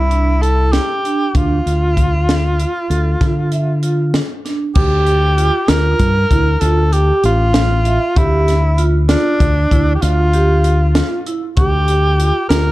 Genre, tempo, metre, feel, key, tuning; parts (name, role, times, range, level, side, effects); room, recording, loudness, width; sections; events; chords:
progressive instrumental, band music in an uneven meter; 194 BPM (eighths); 11/8; straight; D minor; A4 = 440 Hz
clear tenor saxophone; melody; 0.0-12.7 s; D4 to Bb4; -18 LUFS; equal; analog delay
fingered electric bass; bass; 0.0-12.7 s; A1 to D3; -14 LUFS; equal
vibraphone with medium hard mallets; arpeggios; 0.1-12.7 s; D4 to E5; -21 LUFS; right 3 dB
crisp fusion drum kit; drums; 0.1-12.6 s; crash cymbal, hi-hat, kick drum, snare drum; -18 LUFS; equal
light reverb; dark, warm production; -12 LUFS; side -17 dB against mid
0.0-4.8 A section; 4.8-12.7 B section
0.0 C69; 1.3 Dm; 4.8 Bb6/D; 6.6 Dm; 8.2 Dmadd11